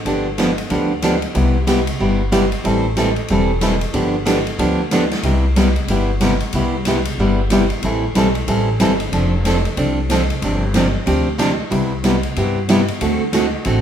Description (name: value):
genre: country, western swing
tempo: 185 BPM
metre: 4/4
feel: swing 61% on 8ths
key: C major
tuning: A4 = 440 Hz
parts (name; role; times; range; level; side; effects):
- picked steel-string acoustic guitar; accompaniment; 0.1-13.8 s; C3 to A4; -17 LUFS; right 1 dB; none
- upright bass; bass; 0.1-13.8 s; E1 to G2; -21 LUFS; left 1 dB; none
- swinging big-band drum kit; drums; 0.1-13.7 s; hi-hat, ride cymbal, snare drum; -24 LUFS; equal; none
room: moderate large studio reverb, RT60 1.3 s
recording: band playing live in one room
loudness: -15 LUFS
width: side -9 dB against mid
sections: 0.0-13.8 A section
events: none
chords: 0.1 G7; 1.4 Cmaj7; 2.7 Am7; 3.9 G7; 5.2 Cmaj7; 7.8 Am7; 9.1 F6; 10.4 G7sus4; 11.7 Cmaj7; 13.0 D7